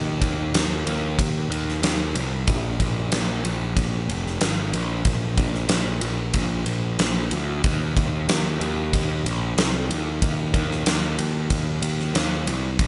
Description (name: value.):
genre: rock, shoegaze and dream pop.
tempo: 93 BPM.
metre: 4/4.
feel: straight.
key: unclear.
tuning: A4 = 436 Hz.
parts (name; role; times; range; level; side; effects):
fuzz picked electric bass; bass; 0.0-12.9 s; F1 to Eb2; -27 LUFS; equal; overdrive.
huge arena drum kit; drums; 0.2-12.9 s; kick drum, ride cymbal, snare drum; -26 LUFS; equal; none.
room: little or no reverb.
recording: nothing above 11.0 kHz.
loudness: -24 LUFS.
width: mono.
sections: 0.0-12.9 A section.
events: none.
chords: none.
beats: 0.54 1.19 1.83 | 2.48 3.12 3.77 4.41 | 5.06 5.70 6.35 6.99 | 7.64 8.28 8.93 9.57 | 10.22 10.86 11.51 12.15 | 12.80.